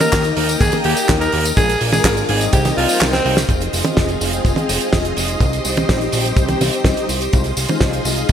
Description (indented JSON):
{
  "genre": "italo disco",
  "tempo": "125 BPM",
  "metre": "4/4",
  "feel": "straight",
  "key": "F minor",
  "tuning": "A4 = 440 Hz",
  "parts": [
    { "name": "raspy alto saxophone", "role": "melody", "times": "0.0-3.4 s", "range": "C4 to Bb4", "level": "-19 LUFS", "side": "equal", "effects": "ping-pong delay" },
    { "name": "string machine, full ensemble", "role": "sustained chords", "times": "0.0-8.3 s", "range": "G4 to Eb6", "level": "-23 LUFS", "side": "equal", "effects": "ensemble chorus" },
    { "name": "mellow synth brass", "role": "stabs", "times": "0.0-8.3 s", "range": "G3 to G5", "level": "-23 LUFS", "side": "left 4 dB", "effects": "chorus" },
    { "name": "damped 70s drum kit", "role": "drums", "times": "0.0-8.3 s", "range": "handclaps, hi-hat, snare drum, tambourine, toms", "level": "-20 LUFS", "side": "right 2 dB", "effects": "studio ambience" },
    { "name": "fat analog bass", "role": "bass", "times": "0.1-8.3 s", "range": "F1 to Eb2", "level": "-22 LUFS", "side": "equal", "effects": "none" },
    { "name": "kick drum", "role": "drums", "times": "0.1-8.3 s", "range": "none", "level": "-18 LUFS", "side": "equal", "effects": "studio ambience" }
  ],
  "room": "moderate plate reverb, RT60 2.0 s",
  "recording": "bright 1980s-style digital production",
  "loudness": "-14 LUFS",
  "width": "side -9 dB against mid",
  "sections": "0.0-3.5 A section; 3.5-8.3 B section",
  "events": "kick drops out 3.0-3.5; drum fill 3.1-3.5",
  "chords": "0.0 Eb; 1.6 Bb7; 2.5 Cm7; 3.5 Fm7; 5.4 Cm; 7.3 Fm7/C",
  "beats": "0.13 0.61 1.09 | 1.57 2.05 2.53 3.01 | 3.49 3.97 4.45 4.93 | 5.41 5.89 6.37 6.85 | 7.33 7.81 8.29"
}